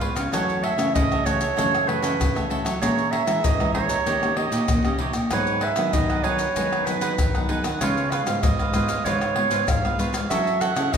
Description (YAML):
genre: samba and choro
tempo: 96 BPM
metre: 4/4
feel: straight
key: C# minor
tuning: A4 = 440 Hz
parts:
  - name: cavaquinho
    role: accompaniment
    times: 0.0-11.0 s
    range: D#4 to A#5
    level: -29 LUFS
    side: right 4 dB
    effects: none
  - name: nylon-string guitar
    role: accompaniment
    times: 0.0-11.0 s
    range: F#2 to A4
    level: -29 LUFS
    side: left 2 dB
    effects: none
  - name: nylon-string guitar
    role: bass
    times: 0.0-11.0 s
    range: G#2 to F#3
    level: -28 LUFS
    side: equal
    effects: none
  - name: pandeiro, maracas, tamborim and surdo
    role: percussion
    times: 0.0-11.0 s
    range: none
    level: -26 LUFS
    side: left 2 dB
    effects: none
  - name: clear clarinet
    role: second line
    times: 0.3-11.0 s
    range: B4 to F#5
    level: -25 LUFS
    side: right 5 dB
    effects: none
room: wet recital hall reverb, RT60 1.5 s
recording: recorded in a church or concert hall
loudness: -20 LUFS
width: side -7 dB against mid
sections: 0.0-11.0 A section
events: clarinet solo 0.0-11.0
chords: 0.3 F#m7; 2.8 A#m7b5; 4.1 D#7; 5.3 G#m7; 7.8 C#7; 10.3 F#m7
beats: | 0.33 0.95 1.57 2.20 | 2.82 3.44 4.07 4.69 | 5.32 5.94 6.56 7.18 | 7.81 8.43 9.05 9.68 | 10.30 10.93